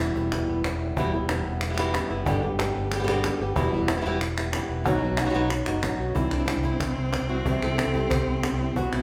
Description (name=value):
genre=flamenco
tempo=185 BPM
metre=4/4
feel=straight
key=E minor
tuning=A4 = 440 Hz
part: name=flamenco guitar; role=melody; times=0.0-9.0 s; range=E2 to C5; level=-30 LUFS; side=equal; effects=none
part: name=flamenco guitar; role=stabs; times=0.0-9.0 s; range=B2 to G4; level=-35 LUFS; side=equal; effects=none
part: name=fingered electric bass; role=bass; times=0.0-9.0 s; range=E1 to C2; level=-32 LUFS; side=equal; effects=none
part: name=cajon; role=percussion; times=0.2-8.9 s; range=none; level=-35 LUFS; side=equal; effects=none
part: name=palmas hand claps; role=percussion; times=0.3-9.0 s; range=none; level=-36 LUFS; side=equal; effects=none
part: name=clear cello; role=second line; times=6.2-9.0 s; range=B3 to C4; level=-32 LUFS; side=equal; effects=none
room=wet recital hall reverb, RT60 1.4 s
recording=recorded in a church or concert hall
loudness=-26 LUFS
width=mono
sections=1.0-6.2 A section; 6.2-9.0 B section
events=none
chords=0.0 Em; 2.3 G; 3.6 Em; 4.9 B; 6.2 C